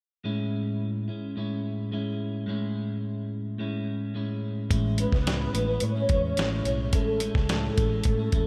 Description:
indie pop, bedroom pop; 108 BPM; 4/4; straight; A major; A4 = 440 Hz
clean electric guitar; accompaniment; 0.2-8.5 s; A2 to E4; -32 LUFS; equal; subtle chorus, warbly pitch drift
vintage muted fingered electric bass; bass; 4.7-8.5 s; A1 to A2; -31 LUFS; equal
dusty soul sampler-style drum kit; drums; 4.7-8.5 s; hi-hat, kick drum, snare drum; -29 LUFS; equal
soft octave-layered synth lead; melody; 5.0-8.5 s; A4 to C#5; -32 LUFS; equal; phaser, ensemble chorus, tape echo
moderate lush hall reverb, RT60 2.9 s; big arena sound; -28 LUFS; mono
0.2-4.7 A section; 4.7-8.5 B section
0.2 Amaj7

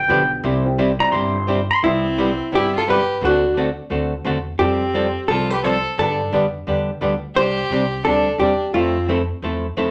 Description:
country; 174 BPM; 4/4; swing 64% on 8ths; C major; A4 = 440 Hz
pedal steel guitar; second line; 0.0-1.8 s; G5 to C6; -21 LUFS; equal
upright bass; bass; 0.0-9.9 s; G1 to G2; -30 LUFS; equal
archtop guitar, miked and amplified; accompaniment; 0.1-9.9 s; C3 to A4; -24 LUFS; equal
dark upright piano; accompaniment; 0.1-1.1 s; G3 to D5; -28 LUFS; equal
vintage hollow-body jazz guitar; melody; 1.8-9.1 s; E4 to C5; -22 LUFS; equal
clear fiddle; second line; 1.8-9.1 s; C4 to A4; -27 LUFS; equal
wet studio reverb, RT60 0.6 s; -19 LUFS; mono
0.0-1.8 A section; 1.8-9.9 B section
pedal steel guitar solo 0.0-1.8
0.4 C; 1.8 Cmaj7; 3.2 D7; 4.6 Fadd9; 6.0 G; 7.4 Csus2; 8.7 Fmaj7

